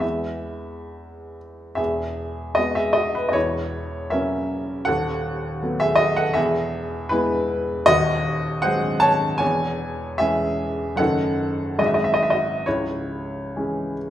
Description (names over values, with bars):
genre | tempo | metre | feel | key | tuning
classical, romantic character piece for solo piano | 64-82 BPM | 2/4 | rubato | E major, C# minor from 7.9 s | A4 = 440 Hz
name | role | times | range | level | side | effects
clear upright piano | solo | 0.0-14.1 s | C#1 to A5 | -20 LUFS | equal | none
room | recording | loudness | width
wet recital hall reverb, RT60 1.6 s | minimal, uncompressed stereo recording | -20 LUFS | side -12 dB against mid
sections
0.0-1.8 A section; 1.8-14.1 A section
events
none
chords
0.0 E; 3.4 F#7/E; 4.9 B7/D#; 6.4 E; 7.9 G#7/D#; 9.4 C#m/E; 11.0 D#dim/F#; 11.8 G#7; 12.7 C#m